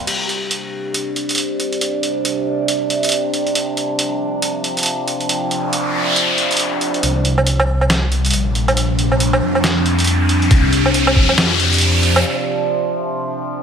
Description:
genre	deep dubstep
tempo	138 BPM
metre	4/4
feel	swing 60% on 16ths, half-time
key	unclear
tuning	A4 = 440 Hz
part	overtone-sweeping drone	sustained chords	0.0-13.6 s	C3 to D4	-20 LUFS	right 1 dB	chorus, built-in reverb, vintage 12-bit sampler grit
part	trip hop sampler-style drum kit	drums	0.1-12.2 s	crash cymbal, hi-hat, snare drum, woodblock	-19 LUFS	right 1 dB	none
part	noise sweep and riser	sound effects	5.6-12.2 s	none	-20 LUFS	left 1 dB	none
part	dark detuned saw bass	bass	7.0-12.2 s	Bb1 to F2	-17 LUFS	equal	none
part	electronic kick drum	drums	10.5-11.3 s	none	-13 LUFS	equal	none
room	moderate lush hall reverb, RT60 1.8 s, digital ambience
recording	none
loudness	-15 LUFS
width	side -7 dB against mid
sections	0.1-7.0 A section; 7.0-13.6 B section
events	noise sweep 5.6-7.0; build-up 7.0-13.6; riser 7.0-12.2; filter sweep on synth drone 7.0-13.6; break 12.2-13.6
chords	0.1 C5

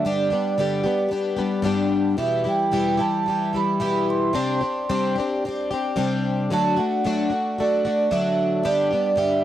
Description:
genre	rock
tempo	112 BPM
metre	4/4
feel	straight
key	G major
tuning	A4 = 441 Hz
part	vibraphone with medium mallets	melody	0.0-9.4 s	D5 to C6	-23 LUFS	right 4 dB	none
part	picked plugged-in twelve-string acoustic guitar	accompaniment	0.0-9.4 s	E2 to G4	-22 LUFS	left 2 dB	wide subtle chorus
room	little or no reverb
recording	dry, close 1970s-style studio recording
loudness	-20 LUFS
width	side -12 dB against mid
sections	0.0-9.4 A section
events	none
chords	0.0 G; 2.2 Em; 4.4 Csus2; 6.5 D; 8.7 G

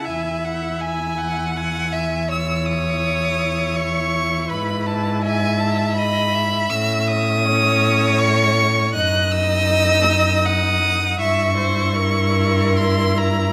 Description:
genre	classical, slow romantic movement for string quartet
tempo	80 BPM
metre	3/4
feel	rubato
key	unclear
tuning	A4 = 441 Hz
part	rich violin	melody	0.0-13.5 s	E5 to F#6	-24 LUFS	equal	none
part	rich violin	second line	0.0-13.5 s	Bb4 to G#5	-25 LUFS	equal	none
part	rich viola	accompaniment	0.0-13.5 s	C#4 to E4	-29 LUFS	equal	none
part	rich cello	bass	0.0-13.5 s	E2 to A2	-24 LUFS	equal	none
room	moderate scoring stage reverb, RT60 1.5 s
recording	close, detailed microphones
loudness	-19 LUFS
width	mono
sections	0.0-13.5 A section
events	none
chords	0.1 Eadd9; 4.5 E/G#; 6.7 A; 8.9 D#m/F#; 11.2 Gdim7

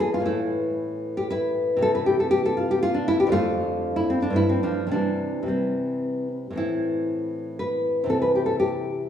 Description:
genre	classical, baroque-style dance for nylon-string guitar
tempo	106-120 BPM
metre	3/4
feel	rubato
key	A minor, C major from 3.3 s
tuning	A4 = 440 Hz
part	nylon-string guitar	solo	0.0-9.1 s	F2 to B4	-22 LUFS	left 1 dB	none
room	wet recital hall reverb, RT60 1.6 s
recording	recorded in a church or concert hall, small room ambience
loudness	-22 LUFS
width	side -9 dB against mid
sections	0.0-6.6 A section; 6.6-9.1 A section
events	none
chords	0.3 A5; 1.8 Am/C; 3.3 Dm/F; 4.4 G5; 4.9 C; 6.6 Am; 8.1 Cmaj13

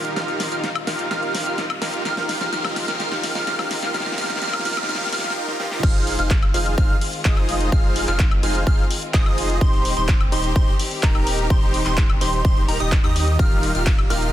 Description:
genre	EDM, festival progressive house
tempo	127 BPM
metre	4/4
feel	straight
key	F minor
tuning	A4 = 440 Hz
part	clear studio string section	sustained chords	0.0-14.3 s	Db3 to G4	-32 LUFS	left 2 dB	sidechain pumping
part	plucky unison lead	arpeggios	0.0-14.3 s	Bb5 to F6	-27 LUFS	equal	ensemble chorus, cassette tape, sidechain pumping, digital delay
part	dense compressed supersaw	riff	0.0-14.3 s	Eb4 to F5	-26 LUFS	right 1 dB	sidechain pumping, digital delay
part	saturated sub bass	bass	0.0-14.3 s	Eb1 to Eb2	-26 LUFS	equal	sidechain pumping
part	big-room dance drum kit	drums	0.0-14.3 s	crash cymbal, handclaps, hi-hat, ride cymbal, snare drum, woodblock	-27 LUFS	left 1 dB	none
part	riser	sound effects	0.1-5.4 s	none	-32 LUFS	equal	none
part	electronic kick drum	drums	5.8-14.0 s	none	-18 LUFS	equal	none
room	light reverb, digital ambience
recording	dense, heavily limited modern master, high-pass filter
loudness	-18 LUFS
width	side -12 dB against mid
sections	0.0-5.8 A section; 5.8-14.3 B section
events	build-up 0.0-5.8; drum fill 0.0-5.4, 5.5-5.8; filter sweep on digital synth lead 0.0-5.8; riser 0.1-5.4; drop 5.8-14.3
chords	0.0 Ebadd9; 2.1 Bbm7; 5.8 Fm7; 9.6 Cm/Eb; 13.4 Ebadd9

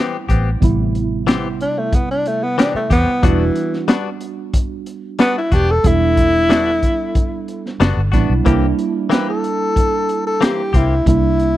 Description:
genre	straight-eighth soul blues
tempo	92 BPM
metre	4/4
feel	straight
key	E minor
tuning	A4 = 440 Hz
part	tine electric piano	accompaniment	0.0-11.6 s	C3 to A4	-22 LUFS	right 6 dB	ensemble chorus
part	direct-recorded clean electric guitar	stabs	0.0-10.9 s	E3 to G4	-22 LUFS	left 7 dB	spring reverb
part	vintage muted fingered electric bass	bass	0.3-11.6 s	E1 to E2	-18 LUFS	equal	none
part	crunchy breakbeat drum kit	drums	0.3-11.5 s	hi-hat, kick drum, snare drum	-17 LUFS	equal	none
part	breathy tenor saxophone	melody	1.6-11.6 s	E3 to B4	-17 LUFS	left 1 dB	none
room	small room ambience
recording	dry, close 1970s-style studio recording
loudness	-14 LUFS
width	side -14 dB against mid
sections	0.0-11.6 A section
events	tenor saxophone solo 0.0-11.6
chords	0.0 Am9; 3.2 Em9; 8.5 C7

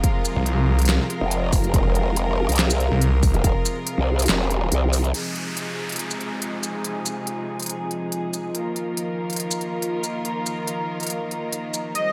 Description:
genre	heavy wobble dubstep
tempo	141 BPM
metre	4/4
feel	swing 53% on 16ths, half-time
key	F minor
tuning	A4 = 439 Hz
part	clear studio string section	sustained chords	0.0-12.1 s	C3 to C5	-30 LUFS	equal	sidechain pumping, low-pass filter
part	dubstep drum kit	drums	0.0-12.0 s	handclaps, hi-hat, shaker, snare drum	-27 LUFS	equal	none
part	electronic kick drum	drums	0.0-3.5 s	none	-23 LUFS	equal	none
part	warbly tape-like pad	texture	0.0-12.1 s	F4 to Bb5	-35 LUFS	equal	chorus, built-in reverb, sidechain pumping
part	snarling distorted saw bass	bass	0.4-3.3 s	C2	-21 LUFS	equal	distortion, overdrive
part	growl bass	bass	1.2-5.1 s	Eb1 to C2	-24 LUFS	equal	chorus, overdrive
part	downlifter	sound effects	5.1-8.5 s	none	-36 LUFS	equal	none
part	soft supersaw	melody	12.0-12.1 s	Eb5	-23 LUFS	equal	none
room	light reverb, digital ambience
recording	none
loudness	-23 LUFS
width	mono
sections	0.0-5.1 A section; 5.1-12.1 B section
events	drop 0.0-5.1; kick drops out 4.7-5.1; filter sweep on string section 5.1-12.1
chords	0.0 Fm; 5.1 Fm7; 8.5 Ebsus2

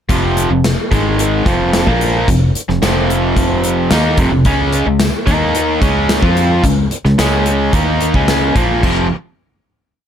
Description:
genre	classic rock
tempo	110 BPM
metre	4/4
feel	straight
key	F minor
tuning	A4 = 440 Hz
part	cranked stack guitar	riff	0.1-9.1 s	F2 to F4	-14 LUFS	equal	overdrive
part	fingered electric bass	bass	0.1-9.1 s	F1 to F2	-18 LUFS	equal	none
part	gated 80s drum kit	drums	0.1-9.0 s	crash cymbal, hi-hat, kick drum, snare drum, tambourine	-16 LUFS	equal	none
room	light reverb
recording	none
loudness	-11 LUFS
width	side -9 dB against mid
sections	0.1-8.8 riff; 8.8-10.1 final chord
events	none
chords	0.1 F5; 0.9 Ab5; 1.5 F5; 4.5 Db5; 5.3 Eb5; 5.8 Db5; 8.8 F5

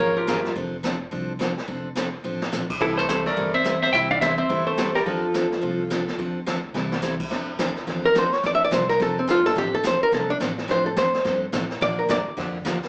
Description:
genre	country, western swing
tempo	213 BPM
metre	4/4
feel	swing 62% on 8ths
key	F major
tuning	A4 = 440 Hz
part	clean lap steel guitar	melody	0.0-0.5, 2.8-6.2 s	E4 to G5	-25 LUFS	equal	slapback echo
part	archtop guitar, miked and amplified	second line	0.0-0.5, 2.8-12.5 s	E3 to E5	-25 LUFS	equal	slapback echo
part	picked steel-string acoustic guitar	accompaniment	0.0-12.8 s	C3 to Bb4	-31 LUFS	equal	slapback echo
part	upright bass	bass	0.0-12.9 s	F1 to Bb2	-38 LUFS	equal	none
part	jazz brush drum kit	drums	0.0-12.9 s	brushed snare drum, crash cymbal, hi-hat, kick drum, snare drum	-32 LUFS	equal	none
room	moderate club reverb, RT60 0.6 s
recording	live gig heard through the venue's PA, club reverb, small speaker sound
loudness	-23 LUFS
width	mono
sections	0.0-7.3 A section; 7.3-12.9 B section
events	drum fill 2.2, 6.7; hollow-body jazz guitar solo 7.3-12.9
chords	0.0 Bbm7; 0.6 F6; 2.8 C6; 5.1 F6; 6.7 C6; 7.3 F6; 11.8 Bb6

